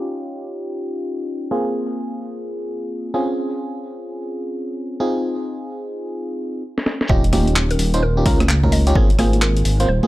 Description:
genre	UK garage, two-step garage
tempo	129 BPM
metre	4/4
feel	swing 63% on 16ths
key	unclear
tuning	A4 = 440 Hz
part	FM electric piano	stabs	0.0-10.1 s	Bb3 to C5	-23 LUFS	equal	chorus, cassette tape, tape echo
part	breakbeat sampler-style drum kit	drums	6.8-10.1 s	congas, handclaps, hi-hat, rim click, snare drum	-21 LUFS	equal	low-pass filter on snare, low-pass filter on hats, low-pass filter on perc
part	mallet-like synth pluck	melody	7.1-10.0 s	Bb4 to Eb5	-28 LUFS	right 1 dB	chorus
part	dark detuned saw bass	bass	7.1-10.0 s	Eb1 to Db2	-17 LUFS	equal	none
part	electronic kick drum	drums	7.1-9.1 s	none	-18 LUFS	equal	none
room	little or no reverb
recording	dry, gritty hardware recording, low-pass filter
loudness	-18 LUFS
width	side -17 dB against mid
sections	0.0-7.1 A section; 7.1-10.1 B section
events	filter sweep 0.0-7.1; drum fill 6.7-7.1; drop 7.1-10.1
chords	0.0 Eb9; 1.5 Ab69; 3.1 Dbmaj7; 5.0 Fm7; 7.1 Eb9; 9.0 Ab69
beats	0.12 0.58 1.05 | 1.51 1.98 2.44 2.91 | 3.37 3.84 4.30 4.77 | 5.23 5.70 6.16 6.63 | 7.09 7.56 8.02 8.49 | 8.96 9.42 9.88

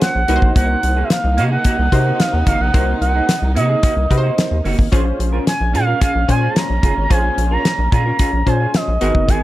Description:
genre	early-eighties boogie funk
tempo	110 BPM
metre	4/4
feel	straight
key	unclear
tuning	A4 = 445 Hz
part	expressive portamento lead	melody	0.0-9.4 s	Eb5 to Bb5	-20 LUFS	right 2 dB	chorus
part	funky polysynth comp	accompaniment	0.0-9.4 s	Cb4 to C5	-23 LUFS	left 3 dB	chorus
part	warm studio string section	sustained chords	0.0-9.4 s	Ab2 to Ab4	-29 LUFS	left 1 dB	none
part	semi-hollow electric guitar	riff	0.0-9.4 s	Bb3 to Bb4	-25 LUFS	right 4 dB	lush chorus
part	damped 70s drum kit	drums	0.0-9.4 s	hi-hat, kick drum, snare drum	-17 LUFS	equal	none
part	rubbery square bass	bass	0.2-9.4 s	Gb1 to C3	-17 LUFS	equal	none
room	light reverb, small room ambience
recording	none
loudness	-14 LUFS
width	side -16 dB against mid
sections	0.0-9.4 A section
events	none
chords	0.3 Cm7b5; 4.9 Bbm7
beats	0.01 | 0.56 1.11 1.65 2.20 | 2.74 3.29 3.83 4.38 | 4.92 5.47 6.01 6.56 | 7.11 7.65 8.20 8.74 | 9.29

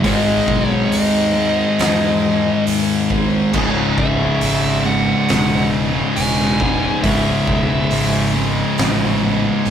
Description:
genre	stoner and doom metal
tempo	69 BPM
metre	4/4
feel	straight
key	C# minor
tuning	A4 = 440 Hz
part	high-gain distorted guitar	riff	0.0-9.7 s	C#2 to G#3	-21 LUFS	equal	distortion
part	thick fuzz guitar	riff	0.0-9.7 s	C#2 to G#3	-20 LUFS	left 5 dB	distortion
part	thick fuzz guitar	riff	0.0-9.7 s	C#2 to G#3	-23 LUFS	right 6 dB	distortion
part	fuzz fingered electric bass	bass	0.0-9.7 s	C#1 to E2	-24 LUFS	right 1 dB	overdrive
part	oversized low-tuned drum kit	drums	0.0-9.7 s	crash cymbal, hi-hat, kick drum, snare drum	-23 LUFS	equal	none
part	fuzz lead guitar	melody	0.1-8.3 s	D#5 to G#5	-21 LUFS	equal	distortion
room	moderate studio ambience, RT60 0.5 s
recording	rough rehearsal-room recording, tube saturation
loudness	-14 LUFS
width	side -8 dB against mid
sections	0.0-9.7 A section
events	none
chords	0.0 G#5; 3.5 C#m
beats	| 0.05 0.92 1.79 2.67 | 3.54 4.42 5.29 6.17 | 7.04 7.91 8.78 9.65

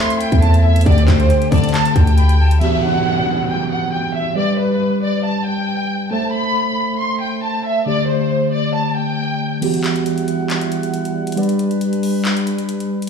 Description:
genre	hip hop, trap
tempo	137 BPM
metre	4/4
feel	half-time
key	E minor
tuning	A4 = 445 Hz
part	warm studio violin section	melody	0.0-9.6 s	B4 to C6	-20 LUFS	equal	low-pass filter, digital delay
part	breathy hollow jazz flute	second line	0.0-2.6 s	E5 to B5	-28 LUFS	left 4 dB	digital delay
part	mellow tine electric piano	accompaniment	0.0-13.1 s	D3 to E5	-20 LUFS	right 1 dB	medium stereo tremolo, low-pass filter
part	mellow brass ensemble	sustained chords	0.0-2.6, 9.6-13.1 s	D3 to F#5	-26 LUFS	left 3 dB	none
part	trap drum kit	drums	0.1-2.7, 9.6-13.1 s	crash cymbal, handclaps, hi-hat, kick drum	-20 LUFS	equal	none
part	distorted 808-style bass	bass	0.3-2.6 s	D2 to D3	-13 LUFS	equal	distortion
part	downlifter	sound effects	2.6-6.1 s	none	-25 LUFS	right 1 dB	none
room	light reverb, digital ambience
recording	played on a big sound system in a bare room, large studio reverb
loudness	-15 LUFS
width	side -6 dB against mid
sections	0.0-2.6 A section; 2.6-9.6 B section; 9.6-13.1 C section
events	kick muted 9.6-13.1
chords	0.0 Am; 0.9 Dsus4; 2.6 Emadd9; 4.4 G; 6.1 Am; 7.9 Dsus4; 9.6 Emadd9; 11.4 G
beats	0.42 | 0.86 1.30 1.74 2.18 | 2.61 3.05 3.49 3.93 | 4.37 4.80 5.24 5.68 | 6.12 6.56 6.99 7.43 | 7.87 8.31 8.75 9.18 | 9.62 10.06 10.50 10.94 | 11.37 11.81 12.25 12.69

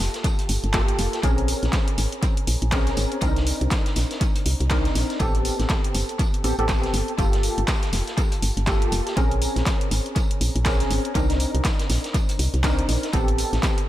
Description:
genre	deep house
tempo	121 BPM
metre	4/4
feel	swing 59% on 16ths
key	unclear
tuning	A4 = 441 Hz
part	percussive organ stab	stabs	0.0-13.9 s	Bb3 to Bb4	-27 LUFS	equal	ensemble chorus, dub echo
part	woody FM bass	bass	0.0-13.6 s	F1 to C2	-24 LUFS	equal	sidechain pumping
part	vintage drum kit	drums	0.0-13.8 s	hi-hat, snare drum, tambourine	-35 LUFS	equal	sidechain pumping on hats, high-pass filter on hats, high-pass filter on snare, sidechain pumping on perc, high-pass filter on perc, high-pass filter on room, tape echo
part	deep house drum kit	drums	0.1-13.9 s	handclaps, hi-hat	-30 LUFS	equal	overdrive, tape echo
part	electronic kick drum	drums	0.2-13.7 s	none	-24 LUFS	equal	overdrive
room	small room ambience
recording	echo-heavy mix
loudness	-20 LUFS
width	side -14 dB against mid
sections	0.0-13.9 A section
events	none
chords	0.0 Gm9; 1.2 Bbm9; 3.2 Cm9; 5.2 Am9; 7.2 Gm9; 9.2 Bbm9; 11.2 Cm9; 13.1 Am9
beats	0.24 0.74 | 1.24 1.73 2.23 2.72 | 3.22 3.71 4.21 4.71 | 5.20 5.70 6.19 6.69 | 7.18 7.68 8.18 8.67 | 9.17 9.66 10.16 10.66 | 11.15 11.65 12.14 12.64 | 13.14 13.63

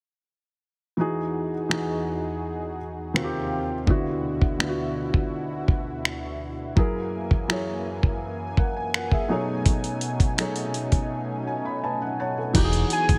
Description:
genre	contemporary R&B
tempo	83 BPM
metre	4/4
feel	straight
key	E major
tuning	A4 = 442 Hz
part	felt-muted upright piano	accompaniment	1.0-13.2 s	B2 to B5	-30 LUFS	equal	none
part	lush unison pad	sustained chords	1.0-13.2 s	D2 to G#5	-35 LUFS	equal	chorus
part	dusty soul sampler-style drum kit	drums	1.7-13.2 s	crash cymbal, finger snaps, hi-hat, kick drum	-25 LUFS	equal	none
part	deep dub fingered electric bass	bass	12.5-13.2 s	E1 to G#1	-26 LUFS	equal	none
part	warm velvety synth lead	melody	12.9-13.2 s	G#5	-24 LUFS	equal	chorus, tremolo
room	light reverb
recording	none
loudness	-26 LUFS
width	mono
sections	1.0-12.5 A section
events	break 11.1-12.5; felt piano fill 11.1-12.5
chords	1.0 Emaj9; 3.2 D#69; 3.9 D69; 6.8 F#9; 9.3 B13; 12.5 Emaj9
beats	| 0.98 1.71 2.43 3.15 | 3.87 4.60 5.32 6.04 | 6.77 7.49 8.21 8.93 | 9.66 10.38 11.10 11.83 | 12.55

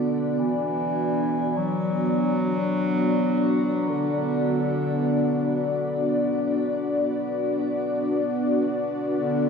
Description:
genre	dark ambient drone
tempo	free time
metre	none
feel	none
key	B minor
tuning	A4 = 440 Hz
part	warm bass clarinet	melody	0.0-9.5 s	D3 to F#3	-28 LUFS	left 2 dB	shimmer reverb, diffuse ambient delay
part	sweeping resonant pad	sustained chords	0.0-9.5 s	B3 to D5	-23 LUFS	equal	chorus, shimmer reverb
room	wet huge ambient reverb, RT60 7.3 s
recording	in a vast, echoing space, cassette tape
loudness	-22 LUFS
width	side -6 dB against mid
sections	0.0-9.5 A section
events	none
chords	0.0 Bm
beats	free time

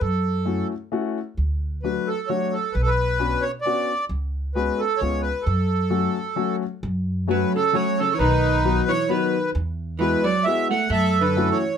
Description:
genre	musette waltz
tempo	132 BPM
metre	3/4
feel	swing 55% on 8ths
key	F# minor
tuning	A4 = 440 Hz
part	accordion	melody	0.0-11.8 s	D#4 to F#5	-23 LUFS	right 2 dB	none
part	upright bass	bass	0.0-11.5 s	B1 to F#2	-24 LUFS	equal	none
part	warm upright piano	accompaniment	0.5-11.6 s	F#3 to F#4	-25 LUFS	left 6 dB	none
part	vintage hollow-body jazz guitar	second line	7.3-11.8 s	C#3 to A3	-26 LUFS	right 5 dB	none
room	moderate small room ambience, RT60 0.5 s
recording	close, detailed microphones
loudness	-20 LUFS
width	side -8 dB against mid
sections	0.0-6.8 A section; 6.8-11.8 A section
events	none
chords	0.0 F#m7; 1.4 D; 2.7 Bmadd9; 4.1 C#7sus4; 5.0 C#7; 5.5 F#m; 8.2 B; 9.5 Eadd9; 10.9 F#m7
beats	| 0.01 0.47 0.93 | 1.38 1.84 2.29 | 2.75 3.20 3.65 | 4.10 4.55 5.01 | 5.46 5.91 6.37 | 6.83 7.29 7.74 | 8.20 8.65 9.10 | 9.55 10.00 10.45 | 10.91 11.36

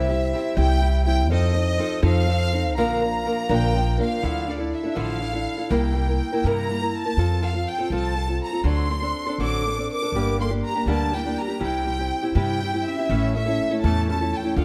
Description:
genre	mexican folk, mariachi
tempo	81 BPM (dotted quarters)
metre	6/8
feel	straight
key	Bb major, D minor from 4.2 s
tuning	A4 = 440 Hz
part	rich chamber violin section	melody	0.0-14.6 s	D5 to D6	-30 LUFS	equal	none
part	breathy hollow bass ocarina	second line	0.0-4.0, 9.4-14.6 s	C#4 to F5	-33 LUFS	equal	none
part	nylon-string guitar	accompaniment	0.0-14.6 s	G2 to Bb4	-28 LUFS	equal	none
part	upright bass	bass	0.0-14.6 s	G1 to G2	-26 LUFS	equal	none
room	light reverb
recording	close, detailed microphones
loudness	-23 LUFS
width	mono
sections	0.0-4.2 A section; 4.2-14.6 B section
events	none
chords	0.0 C; 1.3 F7; 2.8 Bb; 4.2 Dmadd9; 5.7 C7; 7.2 F; 8.6 D7; 10.1 Gm; 11.6 C; 13.1 A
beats	0.57 | 1.30 2.03 | 2.76 3.50 | 4.24 4.97 | 5.71 6.44 | 7.17 7.90 | 8.64 9.38 | 10.12 10.87 | 11.61 12.36 | 13.10 13.83 | 14.57

